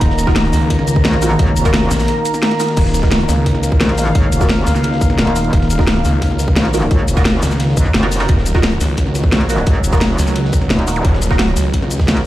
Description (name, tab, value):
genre	dark technical drum and bass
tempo	174 BPM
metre	4/4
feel	straight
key	Eb minor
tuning	A4 = 440 Hz
part	sweeping resonant pad	sustained chords	0.0-12.3 s	Eb3 to F5	-20 LUFS	equal	chorus, sidechain pumping
part	filtered dub chord stab	stabs	0.0-11.4 s	Eb4 to Bb4	-24 LUFS	right 1 dB	phaser, analog chorus, vintage 12-bit sampler grit, dub echo
part	snarling distorted saw bass	bass	0.0-12.1 s	Eb1 to Db2	-17 LUFS	equal	distortion, overdrive, sidechain pumping
part	crunchy breakbeat drum kit	drums	0.0-12.2 s	hi-hat, snare drum	-32 LUFS	equal	none
part	drum and bass drum kit	drums	0.0-12.2 s	crash cymbal, hi-hat, shaker, snare drum	-19 LUFS	equal	overdrive
part	electronic kick drum	drums	0.0-12.1 s	none	-15 LUFS	equal	overdrive
part	deep dark ambient pad	texture	0.0-12.3 s	Bb5	-27 LUFS	right 3 dB	chorus, built-in reverb, sidechain pumping
part	metallic wobble bass	bass	1.0-12.3 s	Eb1 to Eb2	-17 LUFS	equal	chorus
part	zap	sound effects	11.0 s	none	-28 LUFS	equal	none
room	light reverb, digital ambience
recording	played on a big sound system in a bare room, large studio reverb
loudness	-12 LUFS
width	side -14 dB against mid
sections	0.0-12.3 A section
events	break 2.1-2.8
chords	0.0 Ebmadd9